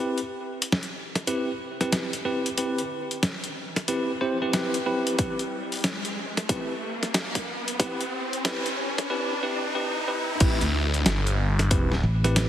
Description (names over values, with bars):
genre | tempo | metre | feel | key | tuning
glitch hop | 92 BPM | 4/4 | swing 64% on 16ths | unclear | A4 = 440 Hz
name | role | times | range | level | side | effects
bell-like tine electric piano | stabs | 0.0-12.5 s | C4 to C5 | -29 LUFS | equal | fast stereo tremolo, sidechain pumping, low-pass filter, dub echo
riser | sound effects | 1.8-10.4 s | none | -33 LUFS | equal | none
boom bap sampler-style drum kit | drums | 0.2-12.5 s | crash cymbal, hi-hat, snare drum | -28 LUFS | equal | none
electronic kick drum | drums | 5.2-11.9 s | none | -24 LUFS | equal | overdrive
phased detuned saw bass | bass | 10.4-12.0 s | G1 to D2 | -24 LUFS | equal | phaser
fingered electric bass | bass | 12.0-12.5 s | A1 | -22 LUFS | equal | none
room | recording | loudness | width
moderate lush hall reverb, RT60 2.6 s | heavily compressed radio sound, multiband compression, high-pass filter | -24 LUFS | side -11 dB against mid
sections
0.0-10.4 A section; 10.4-12.5 B section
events
build-up 0.0-10.4; filter sweep on tine electric piano 0.0-10.4; riser 1.8-10.4; drop 10.4-12.5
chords
0.0 Cmaj7; 10.4 Am7